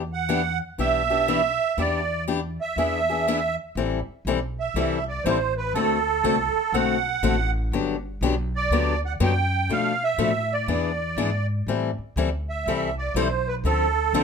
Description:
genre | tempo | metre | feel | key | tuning
acoustic string swing (jazz manouche) | 121 BPM | 4/4 | swing 65% on 8ths | unclear | A4 = 440 Hz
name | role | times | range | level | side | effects
upright bass | bass | 0.0-14.2 s | G1 to B2 | -28 LUFS | equal | none
musette accordion | melody | 0.1-14.2 s | A4 to G5 | -24 LUFS | right 5 dB | plate reverb
picked acoustic archtop guitar | accompaniment | 0.3-14.2 s | B2 to A4 | -25 LUFS | left 7 dB | none
room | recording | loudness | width
moderate studio reverb, RT60 0.5 s | none | -22 LUFS | side -6 dB against mid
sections
0.0-3.8 A section; 3.8-14.2 B section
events
none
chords
0.0 Em7; 2.8 E7; 3.8 Am7; 5.7 D7; 7.7 Gmaj7; 9.7 Bm7b5; 10.7 E7; 11.7 Am11; 13.6 Dm7

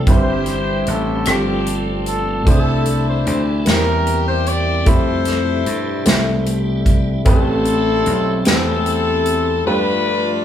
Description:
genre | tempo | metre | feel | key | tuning
slow gospel | 50 BPM (dotted quarters) | 6/8 | straight | C major | A4 = 440 Hz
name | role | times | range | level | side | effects
warm horn section | melody | 0.0-10.4 s | C4 to D5 | -20 LUFS | left 2 dB | none
warm baby grand piano | accompaniment | 0.0-10.4 s | G2 to B5 | -23 LUFS | equal | none
dark French horn section | sustained chords | 0.0-10.4 s | E3 to F4 | -28 LUFS | right 1 dB | none
tonewheel organ | sustained chords | 0.0-10.4 s | B2 to B4 | -28 LUFS | equal | slow rotary speaker, overdrive, chorus vibrato
slap bass | bass | 0.0-9.6 s | G1 to G2 | -21 LUFS | equal | none
natural country drum kit | drums | 0.1-9.4 s | hi-hat, kick drum, rim click, snare drum | -17 LUFS | right 1 dB | none
room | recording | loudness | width
moderate large studio reverb, RT60 1.1 s | band playing live in one room | -14 LUFS | side -10 dB against mid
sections
0.0-10.4 A section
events
none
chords
0.1 C/G; 1.3 G9sus4; 2.5 C69; 3.7 C7/E; 4.9 Fmaj9#11; 7.3 Am9; 9.7 G9

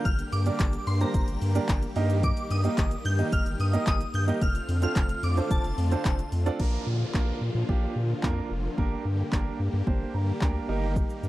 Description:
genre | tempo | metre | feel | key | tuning
dance-pop | 110 BPM | 4/4 | straight | Bb major | A4 = 440 Hz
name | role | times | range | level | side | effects
shimmering bell with halo | melody | 0.0-6.3 s | A5 to G6 | -34 LUFS | left 1 dB | ensemble chorus, tremolo, tape echo
clear baby grand piano | accompaniment | 0.0-11.3 s | Bb3 to Bb5 | -32 LUFS | right 4 dB | sidechain pumping
supersaw chords | sustained chords | 0.0-11.3 s | D3 to G4 | -36 LUFS | left 1 dB | sidechain pumping
round analog bass | bass | 0.1-11.3 s | F1 to Bb2 | -27 LUFS | equal | sidechain pumping
punchy analog drum machine | drums | 0.1-11.3 s | crash cymbal, handclaps, hi-hat, kick drum, shaker | -27 LUFS | equal | none
group handclap | percussion | 0.6-6.2 s | none | -46 LUFS | left 15 dB | none
downlifter | sound effects | 6.6-11.0 s | none | -42 LUFS | equal | none
room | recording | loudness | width
little or no reverb | dry, close 1970s-style studio recording | -24 LUFS | side -16 dB against mid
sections
0.0-6.6 A section; 6.6-11.3 B section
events
grand piano fill 9.9-11.0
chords
0.1 Gm; 2.0 Eb/G; 4.4 F6; 6.6 Bb; 8.8 Gm; 10.7 Eb/G

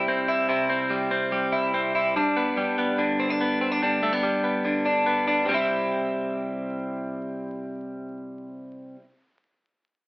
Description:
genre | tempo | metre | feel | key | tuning
indie pop | 144 BPM | 4/4 | straight | C major | A4 = 442 Hz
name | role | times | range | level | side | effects
twelve-string electric guitar | solo | 0.0-9.0 s | G2 to E4 | -23 LUFS | equal | none
room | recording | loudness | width
wet small room reverb, RT60 0.5 s | band playing live in one room, vinyl crackle, AM radio sound | -22 LUFS | side -25 dB against mid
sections
0.0-5.5 A section; 5.5-8.8 B section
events
none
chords
0.0 C; 2.2 G; 5.5 C

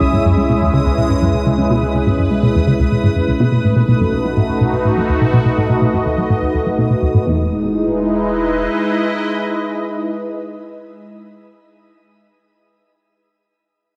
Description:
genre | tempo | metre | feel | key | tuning
ambient, sequencer-driven space music | 124 BPM | 4/4 | straight | E major | A4 = 441 Hz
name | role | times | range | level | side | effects
sweeping resonant pad | sustained chords | 0.0-11.6 s | G#3 to E5 | -20 LUFS | equal | chorus
tight sequenced synth | riff | 0.0-7.5 s | C#2 to G#3 | -18 LUFS | equal | chorus, tape echo
warm sub bass | bass | 0.0-8.7 s | E1 to C#2 | -30 LUFS | equal | none
bubbling stepped-filter texture | texture | 0.0-7.3 s | D#6 | -33 LUFS | equal | chorus, built-in reverb, shimmer reverb
room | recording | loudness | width
wet concert hall reverb, RT60 2.4 s | dark, warm production | -16 LUFS | mono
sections
0.0-7.3 A section; 7.3-11.1 B section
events
fade-out on sub bass 0.0-7.3; filter sweep on synth arpeggio sound 0.0-7.3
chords
0.0 C#m7; 3.4 B7; 7.3 Emaj7

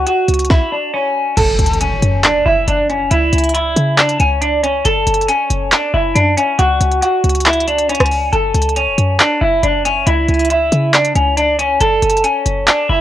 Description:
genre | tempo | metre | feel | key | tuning
hip hop, trap | 138 BPM | 4/4 | half-time | F# minor | A4 = 442 Hz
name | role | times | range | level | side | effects
semi-hollow electric guitar | melody | 0.0-13.0 s | C#4 to A4 | -14 LUFS | equal | phaser, low-pass filter, cassette tape, tape echo
short 808-style bass | bass | 0.0-13.0 s | E1 to C#3 | -17 LUFS | equal | none
trap drum kit | drums | 0.1-12.8 s | crash cymbal, handclaps, hi-hat, kick drum, rim click, snare drum | -16 LUFS | equal | overdrive
impact | sound effects | 1.4-3.1 s | none | -22 LUFS | equal | none
room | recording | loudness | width
light reverb | home recording on cassette | -12 LUFS | side -12 dB against mid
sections
0.0-1.4 A section; 1.4-13.0 B section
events
impact 1.4-3.1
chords
0.0 C#sus4; 1.4 F#m; 3.1 C#m; 4.8 F#m; 6.6 C#sus4; 8.3 F#m; 10.1 C#m; 11.8 F#m

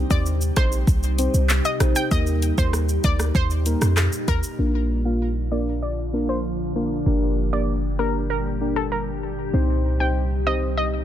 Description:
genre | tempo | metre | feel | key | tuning
dancehall | 97 BPM | 4/4 | straight | unclear | A4 = 441 Hz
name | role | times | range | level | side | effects
deep mellow chord stab | accompaniment | 0.0-10.7 s | Bb3 to C5 | -27 LUFS | left 1 dB | chorus, low-pass filter
glassy FM pad | sustained chords | 0.0-11.0 s | Bb2 to G4 | -29 LUFS | equal | ensemble chorus, built-in reverb, sidechain pumping, low-pass filter
clean 808-style bass | bass | 0.0-11.0 s | G1 to F2 | -23 LUFS | equal | none
analog pluck | melody | 0.1-10.9 s | A4 to G5 | -28 LUFS | equal | chorus, low-pass filter, ping-pong delay
afro-pop drum kit | drums | 0.1-4.6 s | handclaps, hi-hat, kick drum, rim click, shaker | -23 LUFS | equal | none
room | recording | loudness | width
digital ambience | dense, heavily limited modern master | -20 LUFS | side -11 dB against mid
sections
0.0-4.6 A section; 4.6-11.0 B section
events
filter sweep 4.6-11.0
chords
0.0 Cm; 2.1 Eb; 4.6 Bb; 7.1 Gm; 9.5 Cm

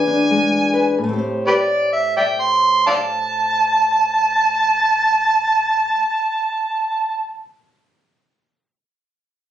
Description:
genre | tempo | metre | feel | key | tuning
acoustic country blues, solo or duo | 85 BPM | 4/4 | swing 64% on 8ths | A minor | A4 = 438 Hz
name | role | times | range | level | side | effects
overdriven harmonica | melody | 0.0-7.4 s | G4 to C6 | -16 LUFS | right 2 dB | none
fingerpicked old ladder-braced acoustic guitar | accompaniment | 0.0-6.1 s | A2 to C5 | -20 LUFS | left 2 dB | none
room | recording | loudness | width
light reverb | recorded on a phone in the room, studio reverb | -15 LUFS | side -10 dB against mid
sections
1.0-6.6 A section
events
none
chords
0.0 E7; 1.0 Am7

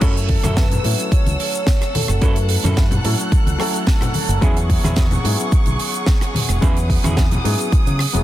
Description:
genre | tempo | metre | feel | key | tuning
nu-disco, nu disco | 109 BPM | 4/4 | straight | F# dorian | A4 = 442 Hz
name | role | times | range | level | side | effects
soft octave-layered synth lead | melody | 0.0-2.8 s | A4 to C#5 | -28 LUFS | equal | chorus, phaser, dub echo
warm baby grand piano | accompaniment | 0.0-8.2 s | F#3 to B4 | -26 LUFS | left 2 dB | sidechain pumping, dub echo
rich studio violin section | sustained chords | 0.0-8.2 s | G#4 to F#6 | -28 LUFS | right 1 dB | sidechain pumping
semi-hollow electric guitar | riff | 0.0-7.6 s | C#4 to A4 | -30 LUFS | right 4 dB | lush chorus, dub echo
fingered electric bass | bass | 0.0-8.2 s | E1 to C#3 | -20 LUFS | equal | tube saturation
electronic kick drum | drums | 0.0-7.8 s | none | -16 LUFS | equal | none
tight funk drum kit | drums | 0.0-8.2 s | crash cymbal, hi-hat, rim click, shaker, snare drum | -25 LUFS | right 3 dB | low-pass filter on hats, low-pass filter on cymbals, low-pass filter on snare, low-pass filter on perc, low-pass filter on room
congas | percussion | 0.4-8.0 s | none | -25 LUFS | left 2 dB | none
room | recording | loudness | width
studio reverb | dense, heavily limited modern master | -15 LUFS | side -14 dB against mid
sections
0.0-8.2 A section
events
drop 0.0-8.2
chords
0.0 F#m7; 4.4 E69

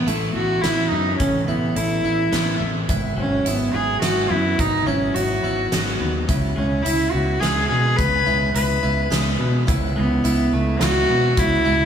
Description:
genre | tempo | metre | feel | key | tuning
post-rock | 106 BPM | 3/4 | straight | C# minor | A4 = 440 Hz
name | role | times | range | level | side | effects
rich cello | melody | 0.0-11.9 s | A3 to B4 | -21 LUFS | equal | tape echo
harpsichord | arpeggios | 0.0-11.9 s | E4 to G#4 | -30 LUFS | right 4 dB | tape echo
twelve-string electric guitar | arpeggios | 0.0-11.9 s | G#2 to A4 | -29 LUFS | equal | tape echo
growling fingered electric bass | bass | 0.0-11.9 s | G#1 to B2 | -23 LUFS | equal | overdrive
huge arena drum kit | drums | 0.1-11.5 s | hi-hat, kick drum, snare drum | -26 LUFS | equal | none
room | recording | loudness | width
light reverb | small room ambience | -18 LUFS | side -8 dB against mid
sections
0.0-11.9 A section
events
none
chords
0.0 Asus2; 2.9 Eadd9/G#; 6.3 C#m7

